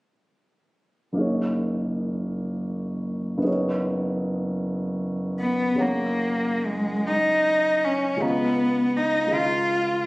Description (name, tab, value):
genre	classical, impressionist duo for cello and grand piano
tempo	46-56 BPM (dotted quarters)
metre	6/8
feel	rubato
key	F# major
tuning	A4 = 440 Hz
part	dark concert grand piano	accompaniment	1.1-10.1 s	F#1 to A#5	-26 LUFS	equal	none
part	rich cello	melody	5.4-10.1 s	G#3 to E#4	-21 LUFS	equal	none
room	wet recital hall reverb, RT60 1.4 s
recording	recorded on a phone in the room, studio reverb, compression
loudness	-22 LUFS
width	side -22 dB against mid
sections	1.2-5.8 A section; 5.8-10.1 B section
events	none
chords	1.2 F#69; 3.5 C#9sus4/F#; 5.8 F#add9; 8.2 C#13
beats	| 1.22 2.37 | 3.47 4.57 | 5.81 7.08 | 8.23 9.34